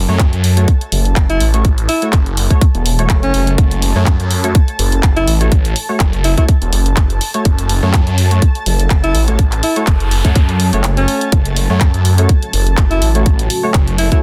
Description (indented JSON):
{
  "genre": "bass house",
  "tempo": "124 BPM",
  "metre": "4/4",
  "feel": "swing 55% on 16ths",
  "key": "F# minor",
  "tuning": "A4 = 435 Hz",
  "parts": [
    { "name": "phased detuned saw bass", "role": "bass", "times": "0.0-14.1 s", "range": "E1 to F#2", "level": "-16 LUFS", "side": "equal", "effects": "phaser, tube saturation, sidechain pumping" },
    { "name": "granular cloud pad", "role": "texture", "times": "0.0-14.2 s", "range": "A5", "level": "-30 LUFS", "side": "equal", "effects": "built-in reverb, sidechain pumping" },
    { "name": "percussive organ stab", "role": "stabs", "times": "0.1-14.2 s", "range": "A3 to C#5", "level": "-25 LUFS", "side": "equal", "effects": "ensemble chorus, vintage 12-bit sampler grit, sidechain pumping, tape echo" },
    { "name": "big-room dance drum kit", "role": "drums", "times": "0.2-14.2 s", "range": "handclaps, hi-hat", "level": "-24 LUFS", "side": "equal", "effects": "none" },
    { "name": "electronic kick drum", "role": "drums", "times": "0.2-14.2 s", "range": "none", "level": "-14 LUFS", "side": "equal", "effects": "none" },
    { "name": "breathy alto saxophone", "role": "melody", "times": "1.3-14.2 s", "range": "C#4 to E4", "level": "-21 LUFS", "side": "equal", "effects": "none" },
    { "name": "noise sweep", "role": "sound effects", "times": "10.0-11.3 s", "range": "none", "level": "-30 LUFS", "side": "equal", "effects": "none" },
    { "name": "dark analog pad", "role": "sustained chords", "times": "12.0-14.2 s", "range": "A3 to F#4", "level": "-28 LUFS", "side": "equal", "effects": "chorus, sidechain pumping" }
  ],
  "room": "digital ambience",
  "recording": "dense, heavily limited modern master",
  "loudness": "-13 LUFS",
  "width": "mono",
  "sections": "0.0-14.2 A section",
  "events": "noise sweep 10.0-11.3; break 10.8-11.3",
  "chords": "0.0 F#m",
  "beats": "0.20 0.68 1.16 | 1.65 2.13 2.62 3.10 | 3.58 4.07 4.55 5.03 | 5.52 6.00 6.49 6.97 | 7.45 7.94 8.42 8.90 | 9.39 9.87 10.36 10.84 | 11.32 11.81 12.29 12.78 | 13.26 13.74 14.23"
}